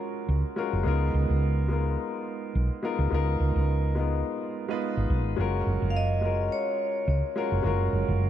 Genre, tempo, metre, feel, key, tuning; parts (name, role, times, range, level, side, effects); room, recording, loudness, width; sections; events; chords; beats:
sunset chillout; 106 BPM; 4/4; swing 55% on 16ths; F# major; A4 = 440 Hz
dark grand piano; accompaniment; 0.0-8.3 s; G#3 to B4; -30 LUFS; moving between left 6 dB and right 5 dB; auto-pan, digital delay
woody fretless electric bass; bass; 0.3-8.3 s; F#1 to C#2; -25 LUFS; right 1 dB
vibraphone with medium hard mallets; melody; 5.9-7.3 s; C#5 to E#5; -30 LUFS; equal; ping-pong delay
light reverb, studio reverb; dark, warm production; -24 LUFS; side -11 dB against mid
0.0-8.3 A section
0.0 F#maj9; 0.9 C#13; 5.4 F#maj9
0.29 | 0.85 1.42 1.99 2.55 | 3.12 3.69 4.25 4.82 | 5.38 5.95 6.52 7.08 | 7.65 8.21